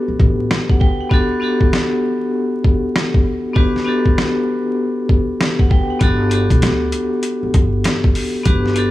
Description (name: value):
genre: hip hop, boom-bap hip-hop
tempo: 98 BPM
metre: 4/4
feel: swing 63% on 16ths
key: unclear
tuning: A4 = 440 Hz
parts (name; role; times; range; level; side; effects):
- vibraphone with hard mallets; accompaniment; 0.0-8.9 s; B3 to G5; -18 LUFS; left 1 dB; high-pass filter, low-pass filter
- upright bass; bass; 0.1-0.5, 6.0-8.9 s; G1 to D2; -19 LUFS; equal; none
- boom bap sampler-style drum kit; drums; 0.2-8.9 s; hi-hat, kick drum, rim click, snare drum; -15 LUFS; equal; none
room: small room ambience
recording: vinyl crackle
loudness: -14 LUFS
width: side -15 dB against mid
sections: 0.0-8.9 A section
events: break 0.0-6.0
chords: 0.0 Gmaj7